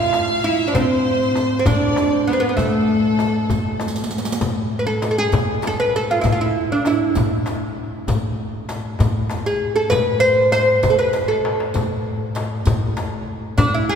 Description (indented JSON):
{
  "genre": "Arabic maqam ensemble",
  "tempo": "65 BPM (dotted quarters)",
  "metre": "6/8",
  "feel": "straight",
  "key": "A maqam nahawand",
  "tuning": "A4 = 435 Hz",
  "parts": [
    { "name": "oud", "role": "melody", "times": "0.0-14.0 s", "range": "A3 to C5", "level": "-18 LUFS", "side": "right 1 dB", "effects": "none" },
    { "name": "clear studio violin section", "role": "second line", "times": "0.0-3.8 s", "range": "A4 to F5", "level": "-27 LUFS", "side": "equal", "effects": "none" },
    { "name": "rich violin", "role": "second line", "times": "0.0-3.8 s", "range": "A4 to F5", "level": "-30 LUFS", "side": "left 5 dB", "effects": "none" },
    { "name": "upright bass", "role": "bass", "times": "0.0-14.0 s", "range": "A2", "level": "-24 LUFS", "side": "left 1 dB", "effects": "none" },
    { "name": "darbuka", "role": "percussion", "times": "0.1-13.7 s", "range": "none", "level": "-28 LUFS", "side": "left 2 dB", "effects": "none" },
    { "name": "frame drum", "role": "percussion", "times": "0.1-13.7 s", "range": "none", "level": "-28 LUFS", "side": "left 2 dB", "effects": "none" },
    { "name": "riq", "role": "percussion", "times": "0.1-13.7 s", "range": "none", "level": "-32 LUFS", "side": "right 2 dB", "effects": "none" }
  ],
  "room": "wet church reverb, RT60 3.3 s",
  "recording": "recorded in a church or concert hall",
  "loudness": "-17 LUFS",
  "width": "side -7 dB against mid",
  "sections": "0.0-4.4 A section; 4.4-14.0 B section",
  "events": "drum fill 3.8-4.4, 11.1-11.8",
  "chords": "none"
}